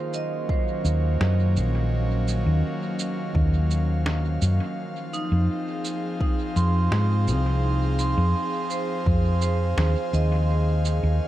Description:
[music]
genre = ambient dub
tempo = 84 BPM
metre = 4/4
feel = straight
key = Eb dorian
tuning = A4 = 439 Hz
[part]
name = airy breathy pad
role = sustained chords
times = 0.0-11.3 s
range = Eb3 to F5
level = -29 LUFS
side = left 1 dB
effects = chorus, vintage 12-bit sampler grit
[part]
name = vibraphone with hard mallets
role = arpeggios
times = 0.0-11.3 s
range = Eb4 to C6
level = -30 LUFS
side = right 4 dB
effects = dub echo
[part]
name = electronic shaker and snare drum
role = drums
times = 0.1-11.0 s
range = none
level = -32 LUFS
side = right 1 dB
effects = overdrive, dub echo
[part]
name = electronic kick drum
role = drums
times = 0.5-9.2 s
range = none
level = -25 LUFS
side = equal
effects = overdrive
[part]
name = hollow-body short-scale fingered electric bass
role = bass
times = 0.8-11.2 s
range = Bb1 to Ab2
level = -21 LUFS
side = equal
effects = tube saturation
[sound]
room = little or no reverb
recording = dark, warm production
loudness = -21 LUFS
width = side -14 dB against mid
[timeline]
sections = 0.0-11.3 A section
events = none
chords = 0.0 Ebm7; 4.8 Fm7; 10.5 Eb7(no3)

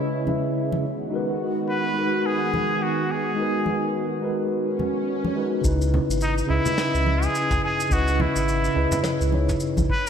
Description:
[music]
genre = sunset chillout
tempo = 106 BPM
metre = 4/4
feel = swing 58% on 16ths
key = unclear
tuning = A4 = 440 Hz
[part]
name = mellow tine electric piano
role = accompaniment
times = 0.0-9.9 s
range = C#3 to E5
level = -25 LUFS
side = equal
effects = medium stereo tremolo, auto-pan, vintage 12-bit sampler grit, tape echo
[part]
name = lush unison pad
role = sustained chords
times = 0.0-5.6 s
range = C#3 to F#4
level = -28 LUFS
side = right 1 dB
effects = chorus
[part]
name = congas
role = percussion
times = 0.3-9.9 s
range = none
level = -32 LUFS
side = left 2 dB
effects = none
[part]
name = trumpet with straight mute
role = melody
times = 1.7-10.1 s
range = D#4 to B4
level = -26 LUFS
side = equal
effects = analog delay
[part]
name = swell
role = sound effects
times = 4.7-5.6 s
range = none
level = -31 LUFS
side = right 4 dB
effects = none
[part]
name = warm sub bass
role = bass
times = 5.6-9.8 s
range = G#1 to C#2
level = -24 LUFS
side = equal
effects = none
[part]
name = electronic kick drum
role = drums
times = 5.6-10.0 s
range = none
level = -26 LUFS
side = equal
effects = overdrive
[part]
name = vintage brush drum kit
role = drums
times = 5.6-10.1 s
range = shaker, snare drum, toms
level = -32 LUFS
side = equal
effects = low-pass filter on toms, low-pass filter on snare, low-pass filter on perc, low-pass filter on room
[sound]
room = wet lush hall reverb, RT60 2.0 s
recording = dreamy mix soaked in reverb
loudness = -21 LUFS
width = side -8 dB against mid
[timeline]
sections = 0.0-5.6 A section; 5.6-10.1 B section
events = swell 4.7-5.6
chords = 0.0 C#m7; 0.8 G#m7; 5.6 C#m7

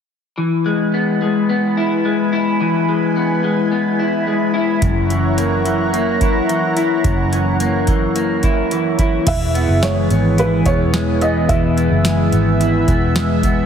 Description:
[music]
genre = dream pop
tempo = 108 BPM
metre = 4/4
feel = straight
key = E lydian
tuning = A4 = 440 Hz
[part]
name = lush unison pad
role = sustained chords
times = 0.4-13.7 s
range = E3 to B5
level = -20 LUFS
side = equal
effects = chorus
[part]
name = electric guitar through a small old amp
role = arpeggios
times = 0.4-13.7 s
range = F#2 to E4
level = -17 LUFS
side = left 2 dB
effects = analog chorus, ping-pong delay
[part]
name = vintage muted picked electric bass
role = bass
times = 4.8-13.7 s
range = E1 to G#1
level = -19 LUFS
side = right 1 dB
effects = none
[part]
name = booming analog drum machine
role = drums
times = 4.8-13.6 s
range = crash cymbal, hi-hat, kick drum, snare drum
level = -20 LUFS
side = right 1 dB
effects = none
[part]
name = felt-muted upright piano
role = melody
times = 9.3-13.1 s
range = B4 to E5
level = -21 LUFS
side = right 2 dB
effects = ping-pong delay
[sound]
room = wet concert hall reverb, RT60 2.0 s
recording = heavily compressed radio sound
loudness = -14 LUFS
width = side -7 dB against mid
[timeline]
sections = 0.4-9.3 A section; 9.3-13.7 B section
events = none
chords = 0.4 E; 4.8 F#7; 9.3 E

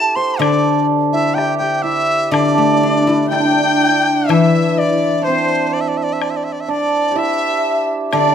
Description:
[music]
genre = chinese traditional, Chinese chamber ensemble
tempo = 62 BPM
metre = 2/4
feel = rubato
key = D shang mode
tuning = A4 = 440 Hz
[part]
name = dizi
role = melody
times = 0.0-8.3 s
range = C5 to C6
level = -19 LUFS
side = equal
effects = none
[part]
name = hammered dulcimer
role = second line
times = 0.0-8.3 s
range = C4 to C5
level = -17 LUFS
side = right 5 dB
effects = none
[part]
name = guzheng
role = accompaniment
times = 0.4-8.3 s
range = D3 to A4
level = -18 LUFS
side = left 6 dB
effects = none
[part]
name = woodblock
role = percussion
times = 0.4-8.3 s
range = none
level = -25 LUFS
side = left 6 dB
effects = none
[part]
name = rich erhu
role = second line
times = 3.3-8.3 s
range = C5 to G5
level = -20 LUFS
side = left 9 dB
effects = none
[sound]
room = moderate recital hall reverb, RT60 1.5 s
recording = close, detailed microphones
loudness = -13 LUFS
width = side -8 dB against mid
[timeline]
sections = 0.0-4.3 A section; 4.3-8.3 B section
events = none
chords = none

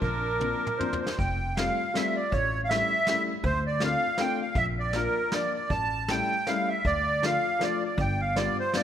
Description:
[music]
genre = musette waltz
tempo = 159 BPM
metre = 3/4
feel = swing 55% on 8ths, rubato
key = F major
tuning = A4 = 440 Hz
[part]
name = accordion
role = melody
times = 0.0-8.8 s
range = Bb4 to A5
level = -27 LUFS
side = right 1 dB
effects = light tremolo tuning
[part]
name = bright violin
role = second line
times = 0.0-1.0 s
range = D4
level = -39 LUFS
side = right 4 dB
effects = none
[part]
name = upright bass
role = bass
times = 0.0-8.5 s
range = F1 to D2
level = -32 LUFS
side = equal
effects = none
[part]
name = vintage brush drum kit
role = drums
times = 0.0-8.8 s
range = hi-hat, kick drum, snare drum, toms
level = -34 LUFS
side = equal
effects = none
[part]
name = warm upright piano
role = accompaniment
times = 0.4-8.8 s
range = F3 to F4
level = -33 LUFS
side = left 5 dB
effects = none
[sound]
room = moderate scoring stage reverb, RT60 1.9 s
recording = none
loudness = -24 LUFS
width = side -9 dB against mid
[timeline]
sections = 0.0-1.2 A section; 1.2-8.8 B section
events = drum fill 0.4-1.2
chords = 0.0 Bbadd9; 1.2 Fadd9; 2.3 A7; 3.4 Dm7; 4.6 Bb; 5.7 A7; 6.9 Dm; 8.0 G7

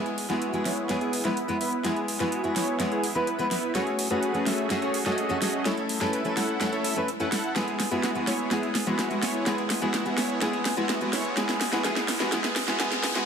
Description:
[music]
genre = EDM, festival progressive house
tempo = 126 BPM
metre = 4/4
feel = straight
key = E major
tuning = A4 = 440 Hz
[part]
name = fingerpicked steel-string acoustic guitar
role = accompaniment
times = 0.0-13.3 s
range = G#3 to B4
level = -29 LUFS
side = left 1 dB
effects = digital delay
[part]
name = supersaw chords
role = riff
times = 0.0-13.3 s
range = A3 to F#5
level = -29 LUFS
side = right 1 dB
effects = cassette tape, low-pass filter, digital delay
[part]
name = big-room dance drum kit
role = drums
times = 0.1-13.2 s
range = hi-hat, snare drum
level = -30 LUFS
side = right 1 dB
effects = overdrive
[part]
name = riser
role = sound effects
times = 9.0-13.3 s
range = none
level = -38 LUFS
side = equal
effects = none
[sound]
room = moderate huge ambient reverb, RT60 6.5 s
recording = high-pass filter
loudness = -24 LUFS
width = side -7 dB against mid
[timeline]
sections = 0.0-13.3 A section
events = build-up 0.0-13.3; drum fill 0.0-13.3; filter sweep on supersaw synth 0.0-13.3; filter sweep 0.0-13.3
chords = 0.0 E; 3.8 F#madd9; 5.7 A; 7.6 E; 11.4 F#sus2

